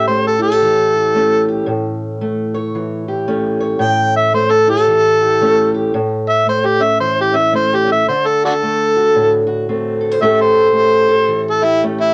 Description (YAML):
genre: acoustic country blues, solo or duo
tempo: 112 BPM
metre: 4/4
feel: swing 62% on 8ths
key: A mixolydian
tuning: A4 = 439 Hz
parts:
  - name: overdriven harmonica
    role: melody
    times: 0.0-12.1 s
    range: D4 to G5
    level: -15 LUFS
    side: equal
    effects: cassette tape
  - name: fingerpicked steel-string acoustic guitar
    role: accompaniment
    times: 0.0-12.1 s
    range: A2 to C#5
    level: -19 LUFS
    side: equal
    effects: cassette tape
room: moderate studio reverb, RT60 0.5 s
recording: home recording on cassette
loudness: -15 LUFS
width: mono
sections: 0.0-12.1 A section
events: harmonica solo 0.0-12.1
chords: 0.0 A7; 8.1 D7; 10.2 A7